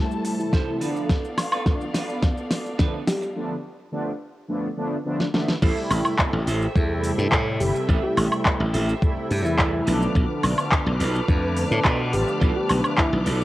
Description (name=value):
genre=nu-disco, nu disco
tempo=106 BPM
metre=4/4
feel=straight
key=A minor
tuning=A4 = 440 Hz
part: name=mellow synth brass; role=accompaniment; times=0.0-13.2 s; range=C3 to E4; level=-28 LUFS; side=equal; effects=chorus, sidechain pumping, cassette tape, analog delay
part: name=muted studio string section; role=sustained chords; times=0.0-13.4 s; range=A3 to F6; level=-31 LUFS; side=left 1 dB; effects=sidechain pumping, cassette tape
part: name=pop drum kit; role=drums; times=0.1-13.4 s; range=cabasa, crash cymbal, handclaps, hi-hat, snare drum, woodblock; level=-26 LUFS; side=equal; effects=cassette tape
part: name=clean electric guitar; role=riff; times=0.2-13.4 s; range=D4 to A5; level=-34 LUFS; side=right 8 dB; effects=lush chorus, vintage 12-bit sampler grit, low-pass filter, cassette tape, analog delay
part: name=soft octave-layered synth lead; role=melody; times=0.4-3.3, 7.6-13.2 s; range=E4 to G4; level=-29 LUFS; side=left 1 dB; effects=chorus, tape echo
part: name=electronic kick drum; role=drums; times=0.5-13.1 s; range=none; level=-22 LUFS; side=equal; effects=cassette tape
part: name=glassy slap bass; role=bass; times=5.6-13.4 s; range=G1 to B2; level=-23 LUFS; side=equal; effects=sidechain pumping
room=light reverb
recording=home recording on cassette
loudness=-20 LUFS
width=side -16 dB against mid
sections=0.0-5.6 A section; 5.6-13.4 B section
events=build-up 0.0-5.6; drum fill 0.0-3.4, 5.2-5.6; filter sweep on clean electric guitar 0.0-5.6; filter sweep on soft synth lead 0.0-5.6; break 3.4-5.6; drop 5.6-13.4; clean electric guitar fill 9.3-10.2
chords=0.0 Am7; 0.8 Bm7b5; 5.3 A5; 5.6 Am7; 9.9 Bm7b5